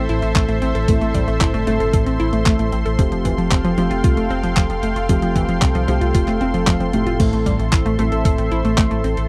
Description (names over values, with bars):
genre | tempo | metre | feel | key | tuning
italo disco | 114 BPM | 4/4 | straight | A minor | A4 = 440 Hz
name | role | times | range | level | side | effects
lush unison pad | sustained chords | 0.0-9.3 s | A4 to C6 | -27 LUFS | equal | chorus
analog pluck | arpeggios | 0.0-9.2 s | E3 to A4 | -24 LUFS | equal | chorus, tape echo
dark baby grand piano | stabs | 0.0-9.3 s | A2 to A4 | -27 LUFS | equal | tape echo
round analog bass | bass | 0.0-9.3 s | F1 to C2 | -24 LUFS | equal | none
clean 12-bit digital drum machine | drums | 0.1-9.3 s | crash cymbal, handclaps, hi-hat | -27 LUFS | equal | none
electronic kick drum | drums | 0.4-8.9 s | none | -20 LUFS | equal | none
room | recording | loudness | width
little or no reverb | dry, close 1970s-style studio recording | -18 LUFS | mono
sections
0.0-9.3 A section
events
none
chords
0.0 Am; 3.0 Fadd9; 7.2 Am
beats
0.36 | 0.88 1.41 1.94 2.46 | 2.99 3.51 4.04 4.57 | 5.09 5.62 6.15 6.67 | 7.20 7.72 8.25 8.78